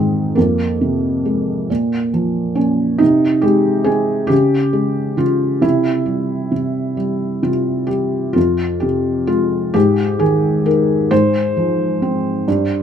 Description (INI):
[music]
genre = classical, lyrical solo piano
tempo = 45 BPM (dotted quarters)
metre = 6/8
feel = rubato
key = F minor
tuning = A4 = 441 Hz
[part]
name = felt-muted upright piano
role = solo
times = 0.0-12.8 s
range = F2 to C5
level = -14 LUFS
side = equal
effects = none
[sound]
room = light reverb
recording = none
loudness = -14 LUFS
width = side -8 dB against mid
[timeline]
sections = 0.0-12.8 A section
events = none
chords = 0.4 Fm; 1.7 Bb5; 3.0 Ab/C; 4.3 Db5; 5.6 C; 8.4 Fm; 9.7 Ab5; 11.1 Fm/Ab